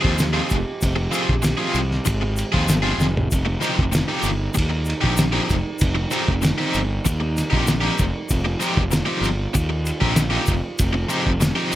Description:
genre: psychedelic rock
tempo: 96 BPM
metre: 4/4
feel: straight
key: unclear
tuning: A4 = 440 Hz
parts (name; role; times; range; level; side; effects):
- warm French horn section; sustained chords; 0.0-11.8 s; C3 to G4; -32 LUFS; right 5 dB; none
- cranked stack guitar; riff; 0.0-11.8 s; F3 to Ab4; -23 LUFS; equal; overdrive, tremolo
- fuzz fingered electric bass; bass; 0.0-11.5 s; F1 to Eb2; -24 LUFS; equal; overdrive
- cloth-damped thuddy drum kit; drums; 0.0-11.8 s; kick drum, ride cymbal, snare drum, toms; -23 LUFS; equal; none
- egg shaker; percussion; 0.2-11.8 s; none; -31 LUFS; left 5 dB; none
room: little or no reverb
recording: none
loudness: -18 LUFS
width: side -14 dB against mid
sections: 0.0-11.8 A section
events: drum fill 3.0-3.3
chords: 0.0 Fm; 3.3 Cm/F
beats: 0.19 | 0.82 1.44 2.06 2.69 | 3.31 3.94 4.56 5.18 | 5.81 6.43 7.05 7.68 | 8.30 8.92 9.55 10.17 | 10.79 11.42

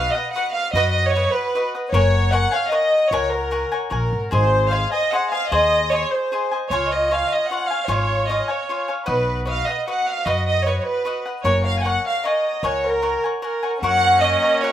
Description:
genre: mexican folk, mariachi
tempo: 151 BPM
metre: 3/4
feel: straight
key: F# major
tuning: A4 = 440 Hz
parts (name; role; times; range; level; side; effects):
- rich chamber violin section; melody; 0.0-14.7 s; A#4 to G#5; -20 LUFS; right 1 dB; slapback echo
- cavaquinho; accompaniment; 0.0-14.7 s; E#4 to G#5; -25 LUFS; left 4 dB; slapback echo
- upright bass; bass; 0.0-14.3 s; F#1 to F#2; -23 LUFS; equal; none
- clear trumpet; second line; 13.8-14.7 s; C#4; -26 LUFS; right 3 dB; slapback echo
- muted studio violin section; sustained chords; 13.8-14.7 s; A#3 to C#5; -32 LUFS; left 2 dB; none
room: little or no reverb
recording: recorded outdoors, with no room sound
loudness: -18 LUFS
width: side -11 dB against mid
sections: 0.0-4.3 A section; 4.3-13.8 A section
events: none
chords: 0.0 B; 1.9 F#add9; 4.3 G#; 6.7 C#; 9.1 B; 11.4 F#add9; 13.8 F#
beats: 0.35 | 0.74 1.14 1.53 | 1.93 2.32 2.72 | 3.12 3.52 3.91 | 4.32 4.71 5.11 | 5.51 5.90 6.30 | 6.70 7.09 7.48 | 7.88 8.27 8.67 | 9.07 9.47 9.87 | 10.26 10.65 11.05 | 11.44 11.84 12.23 | 12.63 13.02 13.43 | 13.82 14.22 14.62

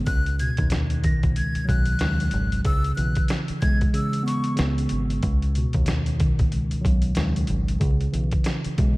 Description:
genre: hip hop, boom-bap hip-hop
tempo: 93 BPM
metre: 4/4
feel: swing 60% on 16ths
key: unclear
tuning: A4 = 439 Hz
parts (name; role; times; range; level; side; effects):
- mellow tine electric piano; accompaniment; 0.0-9.0 s; C#2 to B3; -25 LUFS; equal; cassette tape
- breathy jazz flute; melody; 0.1-4.6 s; C#6 to A#6; -31 LUFS; left 2 dB; tape echo
- deep dub fingered electric bass; bass; 0.1-9.0 s; G#1 to D#2; -26 LUFS; equal; none
- boom bap sampler-style drum kit; drums; 0.1-9.0 s; hi-hat, kick drum, rim click, snare drum; -24 LUFS; equal; none
room: light reverb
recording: vinyl crackle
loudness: -20 LUFS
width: side -22 dB against mid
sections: 0.0-9.0 A section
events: none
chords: 0.1 B; 2.6 C#m7; 5.2 B; 7.8 C#m7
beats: | 0.07 0.71 1.36 2.00 | 2.65 3.29 3.94 4.58 | 5.23 5.87 6.52 7.17 | 7.81 8.46

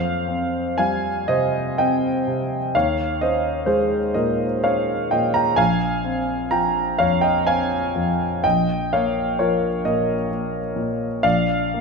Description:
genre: classical, impressionist solo piano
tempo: 42 BPM (dotted quarters)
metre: 6/8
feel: uneven beats, rubato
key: unclear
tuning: A4 = 440 Hz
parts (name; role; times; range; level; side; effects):
- warm grand piano; solo; 0.0-11.8 s; Bb1 to Bb5; -19 LUFS; equal; none
room: wet recital hall reverb, RT60 1.4 s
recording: none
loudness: -19 LUFS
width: side -4 dB against mid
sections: 0.0-11.8 A section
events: none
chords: 0.0 Fsus2; 2.7 Eb7sus4; 5.6 Bbm9; 8.4 Ebsus2/Bb; 11.2 Bb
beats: 1.28 | 2.74 4.15 | 5.59 6.99 | 8.45 9.85 | 11.25

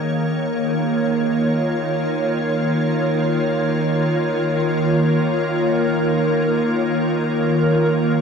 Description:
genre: ambient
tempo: free time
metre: none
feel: none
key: unclear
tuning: A4 = 439 Hz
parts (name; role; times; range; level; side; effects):
- soft additive organ-like pad; sustained chords; 0.0-8.2 s; Eb3 to Db5; -18 LUFS; equal; ensemble chorus, built-in reverb
- bowed-like drone; drone; 0.0-8.2 s; Eb3; -26 LUFS; right 2 dB; built-in reverb
room: wet huge ambient reverb, RT60 8.1 s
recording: dark, warm production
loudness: -17 LUFS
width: side -6 dB against mid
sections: 0.0-8.2 A section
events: none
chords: 0.0 Eb5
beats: free time

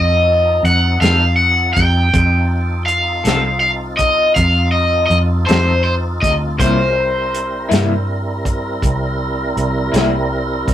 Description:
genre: slow blues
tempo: 54 BPM (dotted quarters)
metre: 12/8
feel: straight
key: unclear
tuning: A4 = 440 Hz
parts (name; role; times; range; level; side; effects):
- overdriven semi-hollow guitar; melody; 0.0-8.0 s; C5 to G5; -15 LUFS; left 1 dB; none
- tonewheel organ; sustained chords; 0.0-10.7 s; F3 to Bb4; -24 LUFS; right 1 dB; chorus vibrato, slow rotary speaker
- vintage muted fingered electric bass; bass; 0.0-10.7 s; C2 to G2; -18 LUFS; equal; none
- warm soul drum kit; drums; 0.6-10.7 s; hi-hat, kick drum, snare drum; -18 LUFS; equal; none
- electric guitar at the edge of break-up; accompaniment; 1.0-10.2 s; C3 to A4; -19 LUFS; left 3 dB; tremolo
room: moderate studio reverb, RT60 0.5 s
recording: rough rehearsal-room recording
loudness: -13 LUFS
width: side -11 dB against mid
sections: 0.0-10.7 A section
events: none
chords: 0.0 F7; 6.6 C7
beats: 1.01 | 2.13 3.25 4.36 5.48 | 6.59 7.71 8.82 9.93

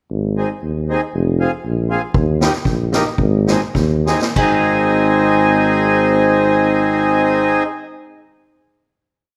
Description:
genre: alpine folk, alpine dance band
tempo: 94-119 BPM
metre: 2/4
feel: straight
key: Ab major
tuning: A4 = 439 Hz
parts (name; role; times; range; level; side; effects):
- mellow tuba; bass; 0.1-7.6 s; F1 to Eb2; -21 LUFS; equal; none
- accordion; accompaniment; 0.4-7.6 s; Bb3 to Ab4; -18 LUFS; equal; none
- street-band drum kit; drums; 2.1-4.5 s; crash cymbal, kick drum, snare drum; -22 LUFS; equal; none
room: moderate recital hall reverb, RT60 1.4 s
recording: none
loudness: -16 LUFS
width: mono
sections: 0.1-4.4 A section; 4.4-6.9 final chord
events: slowing down 2.1-4.4; drum fill 3.8-4.4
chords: 0.1 Ab; 1.1 Fm; 2.1 Eb; 3.2 Ab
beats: | 0.10 0.62 | 1.14 1.65 | 2.15 2.66 | 3.19 3.75 | 4.36 4.99 | 5.62 6.24

